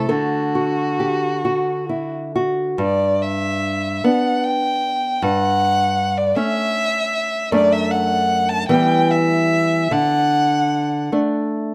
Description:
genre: romantic duo for violin and classical guitar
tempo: 44-53 BPM (dotted quarters)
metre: 6/8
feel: rubato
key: G major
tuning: A4 = 440 Hz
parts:
  - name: rich violin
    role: melody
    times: 0.0-11.1 s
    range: F#4 to A5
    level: -22 LUFS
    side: equal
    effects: none
  - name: nylon-string guitar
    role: accompaniment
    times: 0.0-11.7 s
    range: F#2 to A4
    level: -22 LUFS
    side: equal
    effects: none
room: moderate spring reverb, RT60 1.2 s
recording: none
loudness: -19 LUFS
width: mono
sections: 0.0-2.8 A section; 2.8-11.7 B section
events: none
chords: 0.1 D; 2.8 G; 5.2 A7/G; 7.5 D/F#; 8.7 Em; 9.9 D

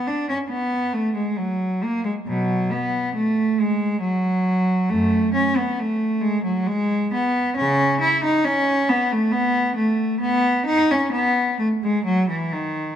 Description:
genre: classical, baroque-style suite movement for unaccompanied cello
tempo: 68 BPM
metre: 3/4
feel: rubato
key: unclear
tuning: A4 = 440 Hz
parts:
  - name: rich cello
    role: solo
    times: 0.0-13.0 s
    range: F#2 to E4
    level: -19 LUFS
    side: equal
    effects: none
room: moderate concert hall reverb, RT60 1.7 s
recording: close, detailed microphones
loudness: -19 LUFS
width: side -10 dB against mid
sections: 0.0-13.0 A section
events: none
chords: none

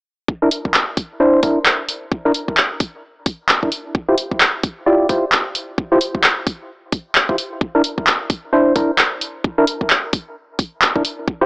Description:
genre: UK garage, two-step garage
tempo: 131 BPM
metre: 4/4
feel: swing 60% on 16ths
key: unclear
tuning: A4 = 438 Hz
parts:
  - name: electronic kick drum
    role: drums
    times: 0.3-11.4 s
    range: none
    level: -20 LUFS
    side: equal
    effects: overdrive
  - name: percussive organ stab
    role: stabs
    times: 0.4-11.5 s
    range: D4 to D5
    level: -16 LUFS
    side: equal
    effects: chorus, dub echo
  - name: punchy analog drum machine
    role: drums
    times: 0.5-11.2 s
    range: handclaps, hi-hat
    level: -15 LUFS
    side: equal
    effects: none
room: moderate plate reverb, RT60 1.6 s, digital ambience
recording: AM radio sound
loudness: -15 LUFS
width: side -24 dB against mid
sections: 0.3-11.5 A section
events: none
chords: 0.3 C7; 3.7 Dm11; 7.6 C7

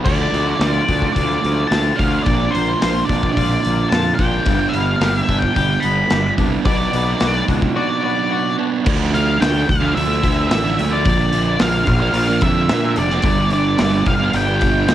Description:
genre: quiet-loud alternative rock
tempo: 109 BPM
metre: 4/4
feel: straight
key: D minor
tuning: A4 = 439 Hz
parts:
  - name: octave-fuzz lead guitar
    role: melody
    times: 0.0-14.9 s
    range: C5 to B5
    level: -21 LUFS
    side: left 2 dB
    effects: distortion
  - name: twangy electric guitar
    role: arpeggios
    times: 0.0-8.9 s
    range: G2 to G4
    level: -28 LUFS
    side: left 9 dB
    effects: tremolo, tape echo
  - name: fuzz guitar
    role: riff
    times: 0.0-14.9 s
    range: G2 to D4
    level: -21 LUFS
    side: right 7 dB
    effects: distortion
  - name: fuzz fingered electric bass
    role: bass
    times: 0.1-14.9 s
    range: F1 to Bb2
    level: -20 LUFS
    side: left 1 dB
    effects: overdrive
  - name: big rock drum kit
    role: drums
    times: 0.1-14.9 s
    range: crash cymbal, hi-hat, kick drum, snare drum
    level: -21 LUFS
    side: left 1 dB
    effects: cassette tape
room: studio reverb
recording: home recording on cassette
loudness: -15 LUFS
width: side -12 dB against mid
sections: 0.1-8.9 A section; 8.9-14.9 B section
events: none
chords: 0.1 Dm; 2.3 Bb; 4.5 G; 6.7 Bm; 8.9 Dm; 11.0 Bb; 13.2 G

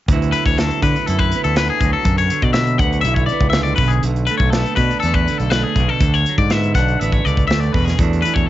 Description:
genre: math rock and midwest emo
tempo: 122 BPM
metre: 4/4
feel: straight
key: D lydian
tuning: A4 = 440 Hz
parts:
  - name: clean electric guitar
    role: accompaniment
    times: 0.1-8.5 s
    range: D2 to E4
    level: -22 LUFS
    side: right 7 dB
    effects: cassette tape
  - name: growling fingered electric bass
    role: bass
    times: 0.1-8.5 s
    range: A1 to D3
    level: -19 LUFS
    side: equal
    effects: overdrive
  - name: modern studio drum kit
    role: drums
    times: 0.1-8.5 s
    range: hi-hat, kick drum, snare drum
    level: -20 LUFS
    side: equal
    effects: cassette tape
  - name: twangy electric guitar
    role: arpeggios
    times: 0.3-8.5 s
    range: G#4 to F#5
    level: -20 LUFS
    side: left 8 dB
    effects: cassette tape
room: little or no reverb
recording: home recording on cassette, nothing above 7.7 kHz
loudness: -14 LUFS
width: side -14 dB against mid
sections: 0.1-8.5 A section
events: none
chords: 0.1 D69; 3.8 Bm7; 8.0 E9sus4

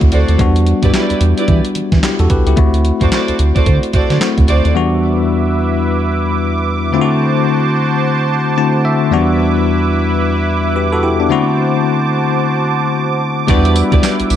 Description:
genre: R&B, new jack swing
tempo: 110 BPM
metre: 4/4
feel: swing 61% on 16ths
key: E minor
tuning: A4 = 440 Hz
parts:
  - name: bell-like tine electric piano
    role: accompaniment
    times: 0.0-14.4 s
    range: E2 to A5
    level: -14 LUFS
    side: left 3 dB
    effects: auto-pan
  - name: round analog bass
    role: bass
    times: 0.0-4.7, 13.5-14.4 s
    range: B1 to E3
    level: -13 LUFS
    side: right 1 dB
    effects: none
  - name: clean 12-bit digital drum machine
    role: drums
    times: 0.0-4.7, 13.5-14.4 s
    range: handclaps, hi-hat, kick drum, snare drum, tambourine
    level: -15 LUFS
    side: right 1 dB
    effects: none
  - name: warm studio string section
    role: stabs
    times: 0.1-4.7, 13.5-14.1 s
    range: E4 to D5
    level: -20 LUFS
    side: right 5 dB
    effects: ping-pong delay
  - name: warm analog pad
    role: sustained chords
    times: 4.8-14.4 s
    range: E4 to D6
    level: -18 LUFS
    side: right 4 dB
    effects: chorus
room: light reverb, digital ambience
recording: none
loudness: -11 LUFS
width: side -10 dB against mid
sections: 0.0-4.8 A section; 4.8-14.4 B section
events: tine electric piano fill 8.3-9.1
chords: 0.4 Em7; 2.6 D7; 4.8 Em7; 6.9 D7; 9.1 Em7; 11.3 D7; 13.5 Em7

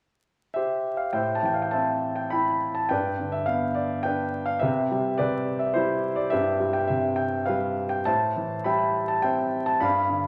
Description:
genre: classical, lyrical solo piano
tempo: 104 BPM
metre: 3/4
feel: rubato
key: C major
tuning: A4 = 439 Hz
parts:
  - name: warm concert grand piano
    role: solo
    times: 0.5-10.3 s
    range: G2 to B5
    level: -25 LUFS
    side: equal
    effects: none
room: moderate scoring stage reverb, RT60 2.0 s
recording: vinyl crackle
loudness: -26 LUFS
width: mono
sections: 0.0-1.1 A section; 1.1-10.3 B section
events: none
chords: 0.0 Cadd11/G; 1.1 Am7; 2.9 G; 4.6 Cmaj7; 8.1 Am7

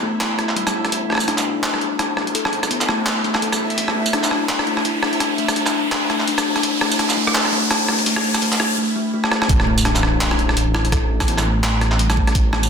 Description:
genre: half-time drum and bass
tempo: 168 BPM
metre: 4/4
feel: swing 57% on 16ths, half-time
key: unclear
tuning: A4 = 440 Hz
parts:
  - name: kalimba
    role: arpeggios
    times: 0.0-12.7 s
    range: G3 to A4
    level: -23 LUFS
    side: left 4 dB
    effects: low-pass filter, digital delay
  - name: dark detuned saw bass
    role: bass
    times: 0.0-12.7 s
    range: E1 to B1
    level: -24 LUFS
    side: right 1 dB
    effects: high-pass filter
  - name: riser and impact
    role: sound effects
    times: 0.5-10.9 s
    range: none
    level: -26 LUFS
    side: equal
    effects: none
  - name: backwards swelling texture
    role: texture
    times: 0.1-8.8 s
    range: E4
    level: -30 LUFS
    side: right 2 dB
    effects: built-in reverb
  - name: boom bap sampler-style drum kit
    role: drums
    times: 0.2-12.7 s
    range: handclaps, hi-hat, rim click, tambourine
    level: -20 LUFS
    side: right 1 dB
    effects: soft clipping on snare, high-pass filter on snare, high-pass filter on hats, high-pass filter on perc, high-pass filter on room
  - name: electronic kick drum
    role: drums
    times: 9.5-12.4 s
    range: none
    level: -19 LUFS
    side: right 1 dB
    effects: none
room: wet echo chamber reverb, RT60 1.3 s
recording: dense, heavily limited modern master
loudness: -16 LUFS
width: side -6 dB against mid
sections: 0.0-9.5 A section; 9.5-12.7 B section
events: build-up 0.0-9.5; riser 0.5-8.8; drum fill 9.2; drop 9.5-12.7; impact 9.5-10.9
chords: 0.0 A5

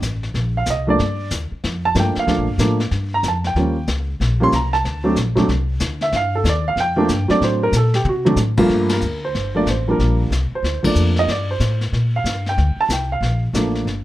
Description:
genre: jazz piano trio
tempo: 187 BPM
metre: 4/4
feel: swing 64% on 8ths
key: G minor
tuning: A4 = 440 Hz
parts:
  - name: upright bass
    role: bass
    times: 0.0-14.0 s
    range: G1 to C3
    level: -20 LUFS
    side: left 1 dB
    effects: none
  - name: vintage brush drum kit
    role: drums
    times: 0.0-14.0 s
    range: brushed snare drum, crash cymbal, hi-hat, kick drum, ride cymbal, snare drum, toms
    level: -26 LUFS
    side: left 3 dB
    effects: none
  - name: dark baby grand piano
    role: melody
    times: 0.6-13.9 s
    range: G2 to C6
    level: -19 LUFS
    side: right 1 dB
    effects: none
room: light reverb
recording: none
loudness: -16 LUFS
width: side -15 dB against mid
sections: 0.0-8.7 A section; 8.7-14.0 B section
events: grand piano solo 0.0-8.7; drum fill 7.7-8.4; band accent 8.9, 10.8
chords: 0.0 C7(no3); 1.0 Gm7; 3.6 Eb7; 4.8 D7(no3); 6.1 G7(no3); 7.4 D7; 8.7 Gm7

